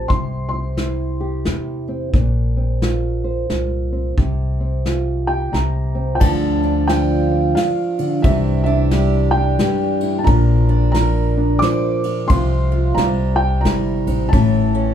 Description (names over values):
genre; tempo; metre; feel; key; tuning
acoustic folk duo or small band; 89 BPM; 3/4; swing 62% on 8ths; unclear; A4 = 439 Hz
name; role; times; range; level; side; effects
felt-muted upright piano; melody; 0.0-1.8, 5.3-14.9 s; E5 to D6; -24 LUFS; equal; none
nylon-string guitar; accompaniment; 0.0-14.9 s; F2 to C5; -20 LUFS; left 1 dB; none
upright bass; bass; 0.0-14.9 s; G1 to E2; -20 LUFS; equal; none
soft brush drum kit; drums; 0.1-14.5 s; crash cymbal, hi-hat, kick drum, ride cymbal, snare drum; -20 LUFS; equal; none
picked old ladder-braced acoustic guitar; arpeggios; 6.2-14.9 s; E3 to Bb4; -23 LUFS; right 4 dB; none
room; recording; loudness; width
wet small room reverb, RT60 0.5 s; heard from further back in the room; -15 LUFS; side -9 dB against mid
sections
0.0-6.2 A section; 6.2-14.9 B section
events
none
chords
0.1 C; 2.1 Bbsus2; 4.2 Csus4; 5.5 C5; 6.2 Dm; 8.2 Cadd9; 10.3 Bbadd9; 12.3 Csus4; 13.0 C; 14.3 A